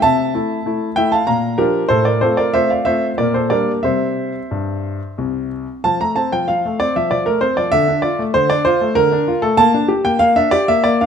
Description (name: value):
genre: classical-period piano sonatina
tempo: 90-98 BPM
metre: 3/4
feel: rubato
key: F major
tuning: A4 = 440 Hz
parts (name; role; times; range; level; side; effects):
- clear grand piano; solo; 0.0-11.1 s; C2 to Bb5; -14 LUFS; equal; none
room: light reverb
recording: close, detailed microphones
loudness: -14 LUFS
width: side -7 dB against mid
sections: 0.0-5.9 A section; 5.9-11.1 B section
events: none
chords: 0.0 Am/C; 1.3 Bb; 1.9 F/A; 3.2 Gm/Bb; 3.9 C; 5.9 F; 7.7 Dm; 9.6 Gm/Bb